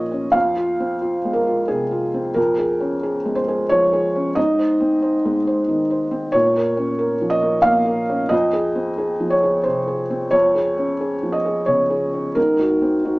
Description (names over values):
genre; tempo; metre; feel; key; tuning
neoclassical minimalist piano; 90 BPM; 3/4; rubato; unclear; A4 = 440 Hz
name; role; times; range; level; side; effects
felt-muted upright piano; solo; 0.0-13.2 s; F2 to F5; -17 LUFS; equal; none
room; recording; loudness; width
wet stone room reverb, RT60 1.2 s; band playing live in one room, small speaker sound; -17 LUFS; side -21 dB against mid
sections
0.0-13.2 A section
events
none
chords
0.3 Fm; 2.4 Db/F; 4.4 Ab; 6.3 Bbm; 8.3 Fm; 10.3 Db/F; 12.4 Ab7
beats
| 0.35 1.03 1.70 | 2.37 3.04 3.71 | 4.37 5.02 5.68 | 6.34 7.00 7.66 | 8.32 8.99 9.66 | 10.34 11.02 11.69 | 12.37 13.06